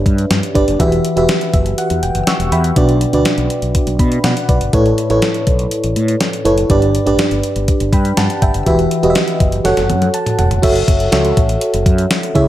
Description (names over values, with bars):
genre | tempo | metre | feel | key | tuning
1980s-style pop | 122 BPM | 4/4 | straight | unclear | A4 = 440 Hz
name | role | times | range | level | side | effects
FM electric piano with tremolo | accompaniment | 0.0-12.5 s | G2 to E6 | -15 LUFS | right 1 dB | none
mellow fretless electric bass | bass | 0.0-12.5 s | E1 to B2 | -18 LUFS | equal | analog chorus
clean 12-bit digital drum machine | drums | 0.1-12.5 s | crash cymbal, hi-hat, kick drum, snare drum, toms | -16 LUFS | equal | none
room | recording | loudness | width
wet plate reverb, RT60 1.3 s | dreamy mix soaked in reverb | -12 LUFS | side -13 dB against mid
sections
0.0-10.6 A section; 10.6-12.5 B section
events
FM electric piano fill 1.3-2.8; drum fill 9.7-10.6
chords
0.0 G; 0.8 Emadd9; 2.8 Bm; 4.7 Aadd9; 6.7 G; 8.7 Emadd9; 9.7 F#m; 10.6 F#m7